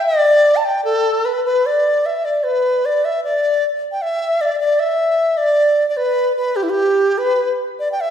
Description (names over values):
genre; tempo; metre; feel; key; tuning
chinese traditional; 75 BPM; 2/4; rubato; unclear; A4 = 441 Hz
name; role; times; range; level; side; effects
bright reedy large dizi; solo; 0.0-8.1 s; E4 to A5; -14 LUFS; equal; none
room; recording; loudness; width
wet recital hall reverb, RT60 1.7 s; heard from further back in the room; -14 LUFS; side -9 dB against mid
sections
0.0-1.6 A section; 1.6-8.1 B section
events
none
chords
none